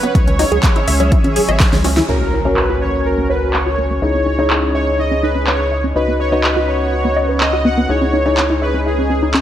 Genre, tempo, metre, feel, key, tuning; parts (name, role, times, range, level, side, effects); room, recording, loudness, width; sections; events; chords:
progressive house; 124 BPM; 4/4; straight; C# dorian; A4 = 440 Hz
soft supersaw; melody; 0.0-9.4 s; G#4 to F#5; -20 LUFS; right 1 dB; sidechain pumping, tape echo
lush unison pad; sustained chords; 0.0-9.4 s; C#4 to F#5; -24 LUFS; right 1 dB; chorus, phaser, sidechain pumping
tight sequenced synth; arpeggios; 0.0-9.4 s; A#3 to B5; -21 LUFS; equal; chorus, phaser, sidechain pumping, tape echo
deep house drum kit; drums; 0.0-9.4 s; crash cymbal, handclaps, hi-hat, snare drum; -20 LUFS; equal; overdrive, low-pass filter on hats, low-pass filter on snare, low-pass filter on cymbals
bongos and congas; percussion; 0.0-1.9 s; -25 LUFS; left 2 dB; overdrive, sidechain pumping on perc
round analog bass; bass; 0.1-9.4 s; G#1 to C#2; -20 LUFS; equal; sidechain pumping
electronic kick drum; drums; 0.1-1.7 s; -14 LUFS; equal; overdrive
felt-muted upright piano; stabs; 2.1-9.4 s; C#4 to D#5; -20 LUFS; left 3 dB; sidechain pumping, low-pass filter
impact; sound effects; 2.1-4.0 s; -25 LUFS; equal
light reverb, digital ambience; -13 LUFS; side -11 dB against mid
0.0-2.1 A section; 2.1-9.4 B section
drum fill 1.6-2.1; band accent 2.0; impact 2.1-4.0; filter sweep on drum 2.1-9.4; filter sweep on synth arpeggio sound 2.1-9.4; filter sweep on felt piano 2.1-9.4; filter sweep on analog synth pad 2.1-9.4
0.2 C#m; 2.1 F#/C#; 4.0 C#madd9; 6.0 B/C#; 7.9 C#madd9